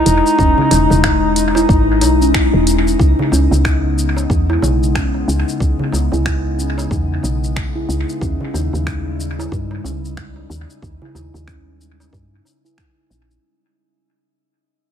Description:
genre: organic downtempo.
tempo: 92 BPM.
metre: 4/4.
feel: swing 60% on 16ths.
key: Eb phrygian dominant.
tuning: A4 = 440 Hz.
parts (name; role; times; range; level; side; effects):
clear duduk; melody; 0.0-2.3 s; D#4; -20 LUFS; equal; dub echo, shimmer reverb.
warbly tape-like pad; sustained chords; 0.0-13.4 s; Db3 to Cb4; -25 LUFS; left 4 dB; chorus, built-in reverb, sidechain pumping, shimmer reverb.
steel tongue drum; arpeggios; 0.0-13.3 s; Db4 to E4; -19 LUFS; left 1 dB; dub echo, shimmer reverb.
woody FM bass; bass; 0.1-13.4 s; E1 to G2; -18 LUFS; equal; sidechain pumping.
organic electronic drum kit; drums; 0.1-13.4 s; finger snaps, hi-hat, shaker; -24 LUFS; left 1 dB; overdrive, dub echo.
electronic kick drum; drums; 0.4-12.9 s; none; -19 LUFS; equal; none.
darbuka; percussion; 0.6-12.6 s; none; -25 LUFS; right 2 dB; none.
room: light reverb, studio ambience.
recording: echo-heavy mix.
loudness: -13 LUFS.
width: side -8 dB against mid.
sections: 0.0-3.0 A section; 3.0-13.4 B section.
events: fade-out 3.0-13.4.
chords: 0.0 Emaj7; 3.0 Dbm7; 8.2 Eb7.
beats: | 0.39 1.04 1.69 2.34 | 2.99 3.65 4.30 4.95 | 5.60 6.25 6.91 7.56 | 8.21 8.86 9.52 10.17 | 10.82 11.47 12.12 12.78.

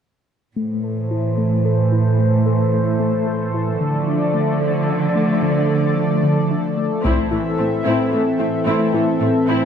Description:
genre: cinematic, hybrid orchestral and electronic film score.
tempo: 74 BPM (dotted quarters).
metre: 6/8.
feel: straight.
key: A minor.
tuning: A4 = 440 Hz.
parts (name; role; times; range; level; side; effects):
chorused pulse-width pad; sustained chords; 0.6-9.7 s; E3 to E5; -20 LUFS; equal; low-pass filter.
harp-like synth pluck; arpeggios; 0.6-9.6 s; D3 to A4; -23 LUFS; left 3 dB; chorus, low-pass filter, ping-pong delay.
warm symphonic cello section; bass; 0.6-9.6 s; A2 to D3; -21 LUFS; right 3 dB; none.
warm symphonic viola section; accompaniment; 7.0-9.7 s; E3 to E4; -22 LUFS; equal; low-pass filter.
taiko ensemble; drums; 7.0-8.1 s; none; -23 LUFS; left 1 dB; none.
room: moderate scoring stage reverb, RT60 1.8 s.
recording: dark, warm production.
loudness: -16 LUFS.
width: side -8 dB against mid.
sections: 0.6-7.0 A section; 7.0-9.7 B section.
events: filter sweep 0.6-7.0; build-up 7.0-9.7.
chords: 0.6 Am; 3.8 Dm; 7.0 Am.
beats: | 0.56 1.37 | 2.18 2.99 | 3.80 4.61 | 5.42 6.24 | 7.04 7.86 | 8.67 9.48.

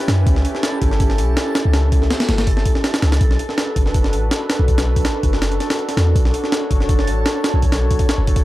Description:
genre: drum and bass, jungle.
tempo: 163 BPM.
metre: 4/4.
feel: swing 53% on 16ths.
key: B minor.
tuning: A4 = 440 Hz.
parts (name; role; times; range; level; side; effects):
warbly tape-like pad; sustained chords; 0.0-8.4 s; C#4 to C#5; -23 LUFS; equal; chorus, built-in reverb.
jungle sampler-style drum kit; drums; 0.0-8.4 s; hi-hat, kick drum, snare drum; -18 LUFS; equal; none.
backwards swelling texture; texture; 0.0-8.4 s; A5; -33 LUFS; right 3 dB; built-in reverb.
warm 808-style bass; bass; 0.1-8.4 s; F#1 to F#2; -18 LUFS; equal; none.
room: digital ambience.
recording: dry, gritty hardware recording, transformer saturation.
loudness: -15 LUFS.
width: side -16 dB against mid.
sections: 0.0-8.4 A section.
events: none.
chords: 0.0 C#m7b5; 3.2 Bm7.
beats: | 0.27 0.63 1.00 1.37 | 1.74 2.10 2.47 2.84 | 3.21 3.58 3.95 4.31 | 4.68 5.05 5.42 5.79 | 6.15 6.52 6.89 7.26 | 7.63 8.00 8.36.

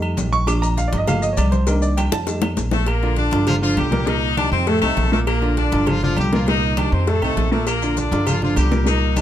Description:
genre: latin, salsa.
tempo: 200 BPM.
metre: 4/4.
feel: straight.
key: Bb major.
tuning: A4 = 440 Hz.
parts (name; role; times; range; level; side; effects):
warm upright piano; accompaniment; 0.0-9.2 s; A2 to D6; -22 LUFS; right 1 dB; none.
upright bass; bass; 0.0-9.2 s; G1 to F2; -20 LUFS; equal; none.
agogo bells and timbales; percussion; 0.0-9.2 s; none; -32 LUFS; right 8 dB; none.
claves; percussion; 0.0-9.2 s; none; -35 LUFS; left 4 dB; none.
congas; percussion; 0.0-9.2 s; none; -28 LUFS; left 2 dB; none.
cowbell and bongos; percussion; 0.2-9.2 s; none; -28 LUFS; left 4 dB; none.
maracas; percussion; 0.2-2.9, 7.7-9.2 s; none; -34 LUFS; left 7 dB; none.
bright horn section; melody; 2.7-9.2 s; F3 to Eb5; -22 LUFS; left 2 dB; none.
room: light reverb.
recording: none.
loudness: -16 LUFS.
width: side -11 dB against mid.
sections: 0.0-2.9 A section; 2.9-9.2 B section.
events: upright piano solo 0.0-2.9; drum fill 2.1-2.9.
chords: 0.5 Bb; 1.1 Gm7; 1.7 Cm7; 2.3 F7; 2.9 Bb; 3.5 Gm7; 4.1 Cm7; 4.7 F7; 5.3 Bb; 5.9 Gm7; 6.5 Cm7; 7.1 F7; 7.7 Bb; 8.3 Gm7.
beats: 0.17 | 0.47 0.77 1.07 1.37 | 1.67 1.97 2.27 2.57 | 2.87 3.17 3.47 3.77 | 4.07 4.37 4.67 4.97 | 5.27 5.57 5.87 6.17 | 6.47 6.77 7.07 7.37 | 7.67 7.97 8.27 8.57 | 8.87 9.17.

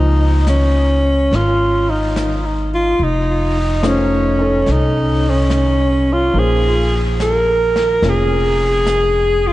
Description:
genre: jazz ballad.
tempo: 72 BPM.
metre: 4/4.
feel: swing 69% on 8ths.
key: Bb minor.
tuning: A4 = 437 Hz.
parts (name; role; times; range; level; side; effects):
clear alto saxophone; melody; 0.0-9.5 s; Db4 to Bb4; -16 LUFS; equal; analog delay.
warm baby grand piano; accompaniment; 0.0-9.5 s; F3 to C5; -24 LUFS; left 2 dB; none.
upright bass; bass; 0.0-9.5 s; F1 to Db2; -17 LUFS; equal; none.
vintage brush drum kit; drums; 0.5-9.5 s; brushed snare drum, hi-hat, snare drum; -28 LUFS; equal; none.
room: moderate lush hall reverb, RT60 2.8 s.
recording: dreamy mix soaked in reverb, vinyl crackle, nothing above 10.4 kHz.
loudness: -13 LUFS.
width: side -16 dB against mid.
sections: 0.0-9.5 A section.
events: none.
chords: 0.0 Dbmaj9; 3.0 F7b13; 6.3 Bbm11.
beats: 0.47 1.32 2.16 | 3.00 3.83 4.67 5.51 | 6.35 7.18 8.02 8.86.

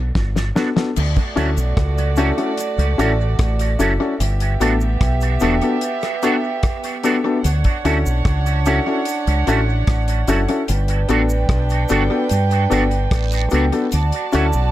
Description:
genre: lovers rock reggae.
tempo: 74 BPM.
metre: 4/4.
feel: straight.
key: D major.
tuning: A4 = 443 Hz.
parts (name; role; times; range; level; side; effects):
deep dub fingered electric bass; bass; 0.0-14.7 s; E1 to G2; -18 LUFS; equal; none.
damped 70s drum kit; drums; 0.2-14.5 s; crash cymbal, hi-hat, kick drum, rim click, snare drum; -22 LUFS; equal; tape echo.
cabasa and guiro; percussion; 0.4-14.7 s; none; -36 LUFS; right 5 dB; tape echo.
warm baby grand piano; accompaniment; 0.6-14.5 s; B3 to A4; -20 LUFS; left 3 dB; none.
electric guitar with an envelope filter; stabs; 0.6-14.5 s; F#3 to F#4; -26 LUFS; right 5 dB; ensemble chorus, tape echo.
warm studio violin section; second line; 0.9-14.7 s; A3 to A5; -24 LUFS; right 4 dB; none.
room: small room ambience.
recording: dark, warm production.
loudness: -16 LUFS.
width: side -14 dB against mid.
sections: 1.0-14.7 A section.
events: drum fill 0.0-1.0.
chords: 0.0 Gmaj7; 1.0 Dmaj7; 4.2 Gmaj7; 7.4 Dmaj7; 10.7 Gmaj7; 13.9 Dmaj7.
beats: 0.15 | 0.96 1.77 2.58 3.39 | 4.20 5.01 5.82 6.63 | 7.44 8.25 9.06 9.87 | 10.68 11.49 12.30 13.11 | 13.92.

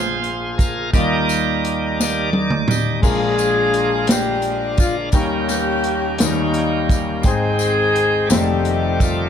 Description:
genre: slow gospel.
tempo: 57 BPM (dotted quarters).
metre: 6/8.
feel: straight.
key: Eb major.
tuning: A4 = 440 Hz.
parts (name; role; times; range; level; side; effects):
clear concert grand piano; accompaniment; 0.0-9.3 s; F1 to G5; -22 LUFS; left 3 dB; none.
bright tonewheel organ; sustained chords; 0.0-9.3 s; Eb3 to G5; -23 LUFS; right 3 dB; slow rotary speaker, overdrive.
swinging big-band drum kit; drums; 0.2-9.2 s; crash cymbal, hi-hat, kick drum, snare drum, toms; -19 LUFS; equal; none.
tambourine; percussion; 0.6-9.3 s; none; -29 LUFS; left 7 dB; none.
mellow saxophone section; melody; 3.0-9.3 s; G3 to Ab4; -19 LUFS; left 2 dB; none.
room: light reverb.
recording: none.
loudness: -16 LUFS.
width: side -8 dB against mid.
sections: 0.0-3.0 A section; 3.0-9.3 B section.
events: tonewheel organ solo 0.0-3.0; drum fill 2.0-3.0.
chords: 0.0 Bb9; 0.9 Ebmaj9; 3.0 Bb7; 5.1 Eb7; 7.2 Abmaj7; 8.3 F13.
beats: | 0.94 1.99 | 3.04 4.09 | 5.14 6.19 | 7.24 8.30.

